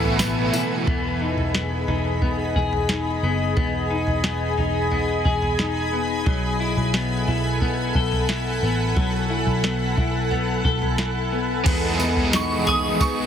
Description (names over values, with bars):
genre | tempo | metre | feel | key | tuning
dream pop | 89 BPM | 4/4 | straight | unclear | A4 = 444 Hz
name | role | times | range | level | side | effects
cranked stack guitar | accompaniment | 0.0-1.4, 11.6-13.3 s | B2 to G#4 | -27 LUFS | right 3 dB | overdrive, tremolo, analog chorus
shimmering ambient pad | sustained chords | 0.0-13.3 s | G#4 to B5 | -26 LUFS | equal | chorus, built-in reverb
semi-hollow electric guitar | arpeggios | 0.0-13.3 s | F#3 to A4 | -26 LUFS | left 5 dB | wide subtle chorus, tape echo
vintage muted picked electric bass | bass | 0.0-13.3 s | E1 to E2 | -26 LUFS | equal | none
soft vintage rhythm box | drums | 0.0-13.2 s | crash cymbal, kick drum, snare drum, tambourine, toms | -26 LUFS | equal | none
vibraphone with medium hard mallets | texture | 12.3-13.3 s | B5 to D#6 | -39 LUFS | left 2 dB | none
shimmering bell with halo | melody | 12.4-13.3 s | C#6 to D#6 | -28 LUFS | right 4 dB | ensemble chorus, tape echo
room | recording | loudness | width
light reverb | heavily compressed radio sound, multiband compression | -20 LUFS | side -8 dB against mid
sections
0.9-11.7 A section; 11.7-13.3 B section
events
none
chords
0.0 B7sus4; 0.9 Emaj7; 6.3 B7sus4; 11.7 Emaj7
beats
0.20 | 0.87 1.55 2.22 2.90 | 3.57 4.24 4.92 5.59 | 6.26 6.94 7.61 8.29 | 8.96 9.64 10.31 10.98 | 11.66 12.33 13.01